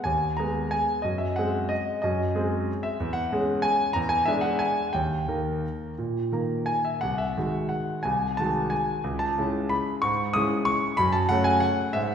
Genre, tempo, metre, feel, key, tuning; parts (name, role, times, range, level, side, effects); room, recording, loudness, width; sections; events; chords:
classical, piano waltz; 164-196 BPM; 3/4; rubato; C# minor from 7.0 s; A4 = 440 Hz
clear concert grand piano; solo; 0.0-12.1 s; B#1 to D#6; -23 LUFS; equal
wet recital hall reverb, RT60 1.6 s; recorded in a church or concert hall; -23 LUFS; side -8 dB against mid
0.0-12.1 A section
0.0 G#m; 1.0 G#7/F#; 3.0 C#m/E; 4.0 E7; 4.9 D#; 7.0 G#7/B#; 9.0 C#m; 11.0 F#m